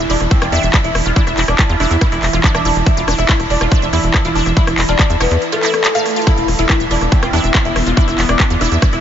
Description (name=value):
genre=psychedelic trance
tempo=141 BPM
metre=4/4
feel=straight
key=unclear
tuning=A4 = 440 Hz
part: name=evolving wavetable pad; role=sustained chords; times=0.0-9.0 s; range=E3 to E4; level=-24 LUFS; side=right 3 dB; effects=chorus, built-in reverb, phaser, vintage 12-bit sampler grit, sidechain pumping
part: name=wide unison pluck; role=riff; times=0.0-8.9 s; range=D4 to F5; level=-22 LUFS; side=right 1 dB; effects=phaser, auto-pan, sidechain pumping, ping-pong delay
part: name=tight sequencer bass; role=bass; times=0.0-9.0 s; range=E1 to E2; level=-18 LUFS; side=equal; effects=none
part: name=oud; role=melody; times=0.1-9.0 s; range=A3 to E4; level=-19 LUFS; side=left 1 dB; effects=phaser, sidechain pumping, diffuse ambient delay
part: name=big-room dance drum kit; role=drums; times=0.1-9.0 s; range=handclaps, hi-hat, rim click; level=-19 LUFS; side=left 1 dB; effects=none
part: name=electronic kick drum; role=drums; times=0.3-8.9 s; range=none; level=-15 LUFS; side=equal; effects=none
part: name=metallic wobble bass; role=second line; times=8.2-8.5 s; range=B3 to D4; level=-29 LUFS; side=right 3 dB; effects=none
room=moderate huge ambient reverb, RT60 7.4 s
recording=dreamy mix soaked in reverb, nothing above 7.7 kHz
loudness=-12 LUFS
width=side -9 dB against mid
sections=0.0-9.0 A section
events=drum fill 6.1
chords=0.0 E5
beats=0.31 0.74 | 1.16 1.59 2.01 2.44 | 2.87 3.29 3.72 4.14 | 4.57 4.99 5.42 5.84 | 6.27 6.69 7.12 7.54 | 7.97 8.40 8.82